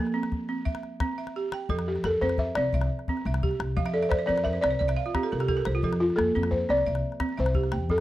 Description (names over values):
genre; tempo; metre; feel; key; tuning
west african traditional, West African string and xylophone music; 116 BPM (dotted quarters); 12/8; straight; F major; A4 = 439 Hz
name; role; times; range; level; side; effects
balafon; melody; 0.0-8.0 s; F4 to E5; -26 LUFS; left 1 dB; none
balafon; arpeggios; 0.0-8.0 s; F3 to G5; -30 LUFS; right 4 dB; slapback echo
calabash; percussion; 0.1-8.0 s; none; -31 LUFS; left 2 dB; none
upright bass; bass; 1.7-8.0 s; C2 to F2; -29 LUFS; left 1 dB; none
room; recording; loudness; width
studio ambience; dry, close 1970s-style studio recording; -24 LUFS; side -15 dB against mid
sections
0.0-8.0 A section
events
balafon fill 3.8-5.8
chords
0.0 F (rootless); 0.7 C; 1.7 F; 2.7 C; 3.8 F5; 4.8 C5; 5.8 F; 6.9 C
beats
0.15 0.67 1.18 | 1.70 2.22 2.74 3.25 | 3.77 4.29 4.80 5.32 | 5.83 6.35 6.87 7.38 | 7.90